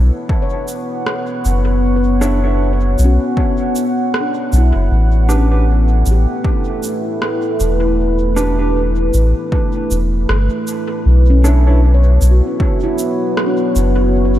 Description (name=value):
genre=ambient dub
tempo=78 BPM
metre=4/4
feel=swing 58% on 16ths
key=B minor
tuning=A4 = 439 Hz
part: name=deep dark ambient pad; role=sustained chords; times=0.0-14.4 s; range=A3 to F#5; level=-19 LUFS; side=equal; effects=chorus, built-in reverb
part: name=soft dub sub bass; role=bass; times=0.0-14.4 s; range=E1 to B1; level=-12 LUFS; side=equal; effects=none
part: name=electronic kick drum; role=drums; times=0.3-12.8 s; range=none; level=-17 LUFS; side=equal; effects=overdrive
part: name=handpan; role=arpeggios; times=0.4-14.4 s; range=C#4 to C#5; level=-24 LUFS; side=left 2 dB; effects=dub echo
part: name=electronic shaker and rim click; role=drums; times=0.7-13.9 s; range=none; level=-26 LUFS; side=right 1 dB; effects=dub echo
part: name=mellow electric guitar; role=stabs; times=2.2-11.8 s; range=D4 to C#5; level=-26 LUFS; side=right 2 dB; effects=dub echo
room=light reverb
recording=none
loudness=-12 LUFS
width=side -13 dB against mid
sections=0.0-11.1 A section; 11.1-14.4 B section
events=none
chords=0.0 Bmadd9; 4.9 A9sus4; 11.1 Bmadd9